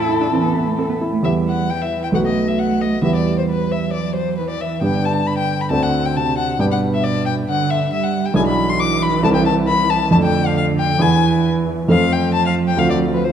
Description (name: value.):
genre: quick classical-period movement for piano trio.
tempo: 135 BPM.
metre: 4/4.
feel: straight.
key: E minor.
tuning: A4 = 442 Hz.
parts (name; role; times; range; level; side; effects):
warm violin; melody; 0.0-13.3 s; A4 to D6; -21 LUFS; left 7 dB; none.
dark cello; second line; 0.0-13.3 s; B2 to E4; -22 LUFS; right 6 dB; none.
warm grand piano; accompaniment; 0.0-13.3 s; B1 to A4; -18 LUFS; right 1 dB; none.
room: wet recital hall reverb, RT60 1.6 s.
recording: dark, warm production.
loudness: -15 LUFS.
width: side -8 dB against mid.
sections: 0.0-1.2 A section; 1.2-13.3 B section.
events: none.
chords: 0.0 A5; 1.2 Em; 2.1 B5; 3.0 Em; 4.8 G; 5.7 D5; 6.6 G; 8.4 E7/B; 9.2 Am/C; 10.1 Dm/F; 11.0 E; 11.9 F; 12.8 Dm7.